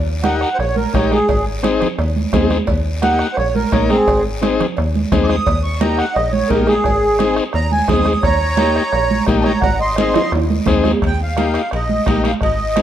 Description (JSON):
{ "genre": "latin, cumbia", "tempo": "173 BPM", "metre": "4/4", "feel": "straight", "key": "Eb major", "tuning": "A4 = 440 Hz", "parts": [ { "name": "metallic FM bass", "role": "bass", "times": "0.0-12.8 s", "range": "Ab1 to Eb2", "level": "-21 LUFS", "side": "equal", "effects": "none" }, { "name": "congas", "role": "percussion", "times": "0.1-12.8 s", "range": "none", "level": "-22 LUFS", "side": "right 5 dB", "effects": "none" }, { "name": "accordion", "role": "melody", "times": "0.2-12.8 s", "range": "C4 to Eb6", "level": "-18 LUFS", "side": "right 2 dB", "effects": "light tremolo tuning" }, { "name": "combo organ", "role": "accompaniment", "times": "0.2-12.8 s", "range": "Bb3 to Bb4", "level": "-21 LUFS", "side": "left 5 dB", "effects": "none" }, { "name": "bombo", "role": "percussion", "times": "0.2-12.8 s", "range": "none", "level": "-22 LUFS", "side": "left 1 dB", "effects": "none" }, { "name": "cowbell and timbales", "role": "percussion", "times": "0.2-12.8 s", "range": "none", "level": "-25 LUFS", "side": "right 4 dB", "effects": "none" }, { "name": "guiro", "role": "percussion", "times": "0.2-12.8 s", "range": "none", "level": "-32 LUFS", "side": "left 4 dB", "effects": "none" } ], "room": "light reverb", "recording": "none", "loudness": "-14 LUFS", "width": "side -10 dB against mid", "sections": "0.0-11.0 A section; 11.0-12.8 B section", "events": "accordion solo 0.0-11.0; drum fill 10.2-11.0", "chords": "0.0 Eb; 1.3 Ab; 2.7 Eb; 4.1 Ab; 5.5 Eb; 6.9 Ab; 8.2 Eb; 9.6 Ab; 11.0 Eb" }